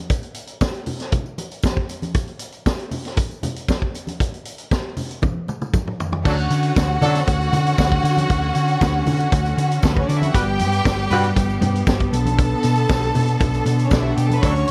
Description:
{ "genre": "disco", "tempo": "117 BPM", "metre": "4/4", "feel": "straight", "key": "D major from 6.3 s", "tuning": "A4 = 439 Hz", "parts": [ { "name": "vintage drum kit", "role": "drums", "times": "0.1-14.7 s", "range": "crash cymbal, hi-hat, kick drum, snare drum, toms", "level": "-24 LUFS", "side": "equal", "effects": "none" }, { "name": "congas", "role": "percussion", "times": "0.1-14.4 s", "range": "none", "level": "-32 LUFS", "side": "equal", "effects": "none" }, { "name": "tambourine", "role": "percussion", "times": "0.1-14.7 s", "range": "none", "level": "-46 LUFS", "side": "equal", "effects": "none" }, { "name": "clear studio string section", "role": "sustained chords", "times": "6.2-14.7 s", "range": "D3 to A4", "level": "-28 LUFS", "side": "equal", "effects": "none" }, { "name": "warm horn section", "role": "stabs", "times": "6.2-7.2, 10.3-11.3, 14.4-14.5 s", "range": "F#3 to B4", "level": "-25 LUFS", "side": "equal", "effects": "none" }, { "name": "bright studio violin section", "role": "second line", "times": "6.3-14.7 s", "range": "A3 to C#6", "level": "-26 LUFS", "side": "equal", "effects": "none" }, { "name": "hollow-body short-scale fingered electric bass", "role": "bass", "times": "6.3-14.6 s", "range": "G1 to D3", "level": "-23 LUFS", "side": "equal", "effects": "none" } ], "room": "small room reverb", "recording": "dark, warm production", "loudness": "-20 LUFS", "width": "mono", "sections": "0.0-6.3 A section; 6.3-14.7 B section", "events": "drum fill 5.2-6.3", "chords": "0.0 N.C.; 6.3 Dmaj7; 10.3 Gmaj7; 12.1 Bm7", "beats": "| 0.10 0.61 1.13 1.64 | 2.15 2.67 3.18 3.69 | 4.20 4.71 5.23 5.74 | 6.25 6.76 7.27 7.79 | 8.30 8.81 9.32 9.83 | 10.34 10.85 11.36 11.87 | 12.38 12.90 13.41 13.92 | 14.43" }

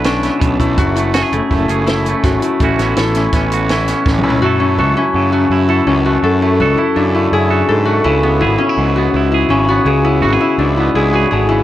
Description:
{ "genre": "math rock and midwest emo", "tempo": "165 BPM", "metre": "5/4", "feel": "straight", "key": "unclear", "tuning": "A4 = 441 Hz", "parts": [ { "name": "twangy electric guitar", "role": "accompaniment", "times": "0.0-11.6 s", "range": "F#2 to B4", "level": "-19 LUFS", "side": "right 7 dB", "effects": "none" }, { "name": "concert harp", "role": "arpeggios", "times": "0.0-11.6 s", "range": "A3 to A4", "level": "-14 LUFS", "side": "left 4 dB", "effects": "none" }, { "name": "fuzz picked electric bass", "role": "bass", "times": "0.0-11.6 s", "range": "F#1 to G#2", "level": "-17 LUFS", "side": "right 1 dB", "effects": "overdrive" }, { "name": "compact cocktail drum kit", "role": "drums", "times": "0.0-4.4 s", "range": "hi-hat, kick drum, snare drum, toms", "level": "-18 LUFS", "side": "right 1 dB", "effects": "none" } ], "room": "light reverb", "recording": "worn, warbling old tape, cassette tape, warbly pitch drift", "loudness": "-11 LUFS", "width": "side -13 dB against mid", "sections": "0.0-4.4 A section; 4.4-11.6 B section", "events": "drum fill 4.1-4.4", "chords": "0.0 Bm7; 0.8 F#m9; 2.6 A6; 4.4 F#m7; 8.0 C#m7", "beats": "0.05 0.41 | 0.78 1.14 1.50 1.87 2.23 | 2.60 2.96 3.33 3.69 4.05 | 4.42 4.78 5.14 5.51 5.87 | 6.23 6.59 6.96 7.32 7.68 | 8.05 8.41 8.77 9.13 9.50 | 9.86 10.22 10.58 10.95 11.31" }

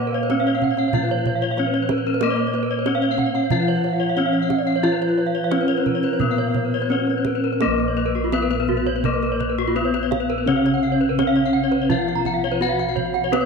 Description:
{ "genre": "Balinese gamelan", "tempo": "84-94 BPM", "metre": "4/4", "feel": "straight", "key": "Bb pelog", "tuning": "A4 = 440 Hz", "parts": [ { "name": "gamelan-type bronze metallophone", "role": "melody", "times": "0.0-13.5 s", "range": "Bb3 to Gb4-20c", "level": "-22 LUFS", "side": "left 1 dB", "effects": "none" }, { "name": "bright reedy bass bansuri", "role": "second line", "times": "0.0-7.1 s", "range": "Gb4 to Gb5", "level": "-29 LUFS", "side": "right 9 dB", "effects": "none" }, { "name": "gamelan-type bronze metallophone", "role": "accompaniment", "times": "0.0-13.5 s", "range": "Db3-30c to Cb4+20c", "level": "-31 LUFS", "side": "equal", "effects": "none" }, { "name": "gamelan-type bronze metallophone", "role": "arpeggios", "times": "0.0-13.5 s", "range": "F4-30c to Bb5", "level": "-27 LUFS", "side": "right 9 dB", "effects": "slapback echo" }, { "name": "gamelan-type bossed gongs", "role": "bass", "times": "0.0-13.5 s", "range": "Bb1 to Cb5+20c", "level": "-26 LUFS", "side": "left 1 dB", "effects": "none" }, { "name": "gamelan-type bronze metallophone", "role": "arpeggios", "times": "0.1-13.4 s", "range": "Gb4-20c to Gb5-20c", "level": "-26 LUFS", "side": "left 9 dB", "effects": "none" }, { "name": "kendang", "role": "percussion", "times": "0.3-13.5 s", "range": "none", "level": "-29 LUFS", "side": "right 9 dB", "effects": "none" } ], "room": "moderate echo chamber reverb, RT60 2.1 s", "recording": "1960s-style stereo with parts hard left and right", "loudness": "-18 LUFS", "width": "side -5 dB against mid", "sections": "0.0-7.6 A section; 7.6-13.5 B section", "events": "none", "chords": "none", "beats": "0.30 0.94 1.58 | 2.22 2.86 3.51 4.17 | 4.84 5.52 6.21 6.90 | 7.61 8.33 9.04 9.76 | 10.47 11.18 11.90 12.61 | 13.33" }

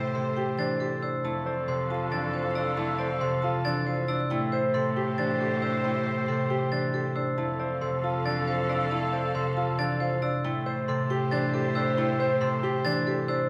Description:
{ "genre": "classical, minimalist pattern music", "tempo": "274 BPM (eighths)", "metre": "7/8", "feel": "straight", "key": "A minor", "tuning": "A4 = 440 Hz", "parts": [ { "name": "vibraphone with hard mallets", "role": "melody", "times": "0.0-13.5 s", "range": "A4 to A5", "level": "-35 LUFS", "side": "equal", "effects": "none" }, { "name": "warm clarinet", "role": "second line", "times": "0.0-13.3 s", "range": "A4 to C5", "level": "-39 LUFS", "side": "equal", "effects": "none" }, { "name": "concert harp", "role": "accompaniment", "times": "0.0-13.5 s", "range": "C3 to A3", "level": "-34 LUFS", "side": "equal", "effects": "none" }, { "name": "rich chamber string section", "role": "sustained chords", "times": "0.0-13.2 s", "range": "G4 to F5", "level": "-41 LUFS", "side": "equal", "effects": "none" }, { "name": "warm grand piano", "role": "arpeggios", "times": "0.0-13.5 s", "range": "D4 to C5", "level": "-34 LUFS", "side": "equal", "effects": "none" }, { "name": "rich cello", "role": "bass", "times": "0.0-13.4 s", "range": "F2 to A2", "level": "-37 LUFS", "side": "equal", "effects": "none" }, { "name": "glockenspiel with hard plastic mallets", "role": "arpeggios", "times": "0.1-13.5 s", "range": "C6 to A6", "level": "-36 LUFS", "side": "equal", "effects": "none" } ], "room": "wet large studio reverb, RT60 1.3 s", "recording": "vinyl crackle", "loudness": "-28 LUFS", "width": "mono", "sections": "0.0-13.5 A section", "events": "none", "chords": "0.0 Am7; 1.2 Fmaj7; 4.3 Am7; 7.4 Fmaj7; 10.4 Am7", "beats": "0.15 0.37 0.59 0.81 1.03 | 1.25 1.47 1.69 1.90 2.12 2.34 2.56 | 2.78 3.00 3.22 3.44 3.65 3.87 4.09 | 4.31 4.53 4.75 4.97 5.19 5.41 5.63 | 5.84 6.06 6.28 6.50 6.72 6.94 7.16 | 7.38 7.60 7.82 8.04 8.25 8.47 8.69 | 8.91 9.13 9.35 9.57 9.79 10.01 10.22 | 10.44 10.66 10.88 11.10 11.32 11.54 11.76 | 11.98 12.20 12.41 12.63 12.85 13.07 13.29" }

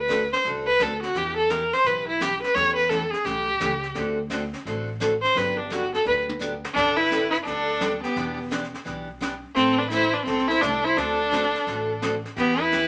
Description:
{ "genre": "country, western swing", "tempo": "171 BPM", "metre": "4/4", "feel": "swing 64% on 8ths", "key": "G major", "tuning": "A4 = 440 Hz", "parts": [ { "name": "warm viola", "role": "melody", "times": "0.0-12.9 s", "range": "B3 to C#5", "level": "-25 LUFS", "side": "equal", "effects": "none" }, { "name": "upright bass", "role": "bass", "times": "0.0-12.9 s", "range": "E1 to E2", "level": "-40 LUFS", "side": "equal", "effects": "none" }, { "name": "picked steel-string acoustic guitar", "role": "accompaniment", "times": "0.1-12.8 s", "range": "D3 to A4", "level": "-32 LUFS", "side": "equal", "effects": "none" }, { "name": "jazz brush drum kit", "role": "drums", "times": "0.1-12.9 s", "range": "brushed snare drum, crash cymbal, hi-hat, kick drum, snare drum, toms", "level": "-37 LUFS", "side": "equal", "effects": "none" }, { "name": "clear fiddle", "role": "second line", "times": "6.8-12.9 s", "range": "G4 to C5", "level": "-31 LUFS", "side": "equal", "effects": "none" } ], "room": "moderate studio reverb, RT60 0.8 s", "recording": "none", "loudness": "-24 LUFS", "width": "mono", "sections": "0.0-6.8 A section; 6.8-12.9 B section", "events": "viola solo 0.0-6.8; drum fill 6.1-6.8", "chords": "0.0 D7; 1.1 Em; 2.6 A7/E; 4.0 D7; 5.4 Gmaj7; 6.8 Gadd9; 8.2 Em7; 9.6 Am; 11.0 D7; 12.4 Em", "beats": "0.09 0.44 0.80 | 1.15 1.50 1.85 2.20 | 2.55 2.90 3.25 3.60 | 3.96 4.31 4.66 5.01 | 5.36 5.71 6.06 6.41 | 6.76 7.11 7.46 7.81 | 8.16 8.51 8.86 9.21 | 9.56 9.91 10.26 10.61 | 10.96 11.31 11.66 12.02 | 12.37 12.72" }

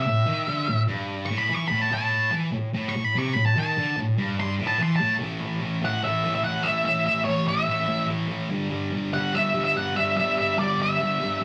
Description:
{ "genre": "rock", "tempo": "145 BPM", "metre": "4/4", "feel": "straight", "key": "A major", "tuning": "A4 = 440 Hz", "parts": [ { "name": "octave-fuzz lead guitar", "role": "melody", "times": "0.0-11.4 s", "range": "C#5 to C#6", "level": "-26 LUFS", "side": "equal", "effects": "distortion" }, { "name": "thick fuzz guitar", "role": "riff", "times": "0.0-11.4 s", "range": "G2 to A3", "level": "-28 LUFS", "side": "equal", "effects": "distortion" } ], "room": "wet small room reverb, RT60 0.5 s", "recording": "rough rehearsal-room recording, cassette tape", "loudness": "-25 LUFS", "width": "mono", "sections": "0.0-5.2 A section; 5.2-11.4 B section", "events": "lead electric guitar solo 0.0-5.2", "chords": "0.0 N.C.; 5.2 A5; 8.5 G5", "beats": "| 0.27 0.68 1.10 1.51 | 1.92 2.33 2.75 3.16 | 3.57 3.98 4.40 4.81 | 5.22 5.64 6.05 6.46 | 6.87 7.29 7.70 8.11 | 8.52 8.94 9.35 9.76 | 10.17 10.59 11.00 11.41" }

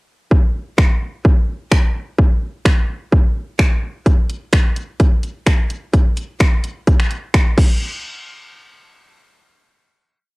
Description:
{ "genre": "pop", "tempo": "128 BPM", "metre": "4/4", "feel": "straight", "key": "none", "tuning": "none", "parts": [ { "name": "house drum kit", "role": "drums", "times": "0.3-7.7 s", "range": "crash cymbal, finger snaps, hi-hat, kick drum", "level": "-13 LUFS", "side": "equal", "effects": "overdrive" } ], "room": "little or no reverb", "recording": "home recording on cassette", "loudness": "-14 LUFS", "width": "side -26 dB against mid", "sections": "0.3-7.8 verse; 7.8-10.4 final hit", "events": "none", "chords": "none", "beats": "| 0.31 0.78 1.25 1.72 | 2.19 2.65 3.12 3.59 | 4.06 4.53 5.00 5.47 | 5.94 6.41 6.87 7.34" }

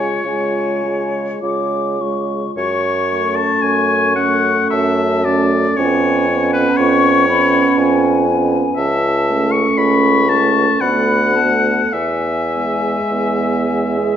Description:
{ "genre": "classical, slow romantic movement for wind quintet", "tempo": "50-61 BPM", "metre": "3/4", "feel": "rubato", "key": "F# minor, A major from 8.8 s", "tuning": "A4 = 441 Hz", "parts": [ { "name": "hollow concert flute", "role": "melody", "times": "0.0-14.2 s", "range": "G#5 to D6", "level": "-22 LUFS", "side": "left 8 dB", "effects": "none" }, { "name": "bright oboe", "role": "second line", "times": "0.0-14.2 s", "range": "B4 to C#6", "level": "-18 LUFS", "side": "left 3 dB", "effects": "none" }, { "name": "dark clarinet", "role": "accompaniment", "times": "0.0-14.2 s", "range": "B3 to G#4", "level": "-20 LUFS", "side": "right 6 dB", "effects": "none" }, { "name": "warm French horn", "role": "accompaniment", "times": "0.0-14.2 s", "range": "G#3 to B3", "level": "-22 LUFS", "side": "equal", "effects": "none" }, { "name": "mellow bassoon", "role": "bass", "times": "0.0-14.1 s", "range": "C#2 to C#3", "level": "-19 LUFS", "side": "right 2 dB", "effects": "none" } ], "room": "wet recital hall reverb, RT60 1.7 s", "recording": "nothing above 7.6 kHz", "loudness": "-13 LUFS", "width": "side -9 dB against mid", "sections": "0.0-2.6 A section; 2.6-14.2 B section", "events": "none", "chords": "0.0 C#; 2.6 F#m; 5.8 C#7/E#; 8.8 A/C#; 10.8 Bm7/D; 11.9 E", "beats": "0.26 1.43 | 2.57 3.63 4.72 | 5.78 6.79 7.78 | 8.78 9.78 10.82 | 11.94 13.11" }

